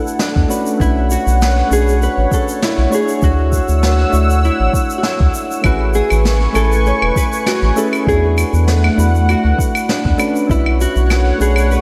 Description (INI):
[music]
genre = sunset chillout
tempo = 99 BPM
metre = 4/4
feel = swing 55% on 16ths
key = unclear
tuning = A4 = 440 Hz
[part]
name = nylon-string guitar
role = melody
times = 0.0-11.8 s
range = D4 to C#5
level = -24 LUFS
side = equal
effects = subtle chorus, delay
[part]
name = soft electric-piano-like synth keys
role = accompaniment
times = 0.0-11.8 s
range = A3 to G#5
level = -23 LUFS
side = equal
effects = chorus, delay
[part]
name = lush unison pad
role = sustained chords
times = 0.0-11.8 s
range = A3 to E6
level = -23 LUFS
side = equal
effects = chorus
[part]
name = shaker, snare drum and claves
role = drums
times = 0.1-11.8 s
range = none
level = -25 LUFS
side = equal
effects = none
[part]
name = round analog bass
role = bass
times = 0.4-11.8 s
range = E1 to E2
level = -16 LUFS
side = equal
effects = none
[part]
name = electronic kick drum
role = drums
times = 0.4-10.6 s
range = none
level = -20 LUFS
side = equal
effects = none
[sound]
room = moderate lush hall reverb, RT60 1.9 s, small room reverb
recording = dreamy mix soaked in reverb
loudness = -15 LUFS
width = mono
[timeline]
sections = 0.0-11.8 A section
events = none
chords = 0.5 Bm9; 2.9 Dmaj9; 5.6 Amaj9; 8.1 E9sus4; 10.2 Bm9